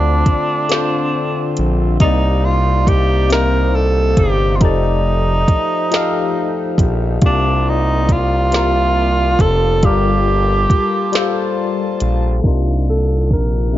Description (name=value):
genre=slow six-eight R&B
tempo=46 BPM (dotted quarters)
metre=6/8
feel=straight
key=unclear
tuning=A4 = 440 Hz
part: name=warm tenor saxophone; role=melody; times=0.0-13.8 s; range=D4 to Bb4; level=-18 LUFS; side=right 1 dB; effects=slapback echo
part: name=barky tine electric piano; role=accompaniment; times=0.0-13.8 s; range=C3 to F5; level=-20 LUFS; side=left 5 dB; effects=phaser
part: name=pedal harmonium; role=sustained chords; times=0.0-12.4 s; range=C3 to A5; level=-27 LUFS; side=right 1 dB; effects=stereo widening
part: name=smooth gliding synth bass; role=bass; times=0.0-13.8 s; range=F1 to D2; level=-16 LUFS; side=equal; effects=none
part: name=smooth R&B drum kit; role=drums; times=0.3-13.8 s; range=hi-hat, kick drum, snare drum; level=-15 LUFS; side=equal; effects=none
room=little or no reverb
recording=dark, warm production, low-pass filter, nothing above 7.5 kHz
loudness=-13 LUFS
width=side -13 dB against mid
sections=0.0-12.4 A section; 12.4-13.8 B section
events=filter sweep 12.4-13.8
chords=0.0 Dm7; 2.0 Cm9; 4.6 F13; 7.2 C9sus4; 9.8 Gm9; 12.4 Cm11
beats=0.70 | 2.00 3.31 | 4.61 5.92 | 7.22 8.53 | 9.83 11.13 | 12.44 13.74